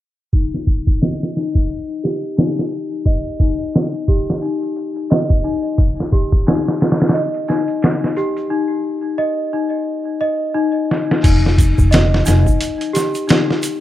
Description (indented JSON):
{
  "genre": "trip hop",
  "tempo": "88 BPM",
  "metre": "4/4",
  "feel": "swing 59% on 16ths",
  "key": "unclear",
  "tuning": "A4 = 441 Hz",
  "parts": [
    { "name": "worn celesta", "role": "arpeggios", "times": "0.3-13.8 s", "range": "Eb4 to Eb5", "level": "-20 LUFS", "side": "left 2 dB", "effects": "vintage 12-bit sampler grit, low-pass filter, digital delay" },
    { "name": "trip hop sampler-style drum kit", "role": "drums", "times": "0.3-13.8 s", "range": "crash cymbal, hi-hat, kick drum, snare drum", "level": "-16 LUFS", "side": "equal", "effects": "low-pass filter on kick, low-pass filter on hats, low-pass filter on snare, low-pass filter on cymbals" },
    { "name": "tube shaker", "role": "percussion", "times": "5.8-13.8 s", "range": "none", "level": "-31 LUFS", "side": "right 5 dB", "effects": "none" },
    { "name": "upright bass", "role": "bass", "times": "11.2-12.4 s", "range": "F1", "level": "-14 LUFS", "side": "equal", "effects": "none" }
  ],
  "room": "light reverb",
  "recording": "rough home demo mix, low-pass filter",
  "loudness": "-15 LUFS",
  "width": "side -13 dB against mid",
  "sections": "0.3-11.2 A section; 11.2-13.8 B section",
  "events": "filter sweep on celesta 0.3-11.2; filter sweep 0.3-11.2; break 8.5-11.2; drum fill 10.9-11.2",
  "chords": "0.3 Eb; 11.2 Fsus2"
}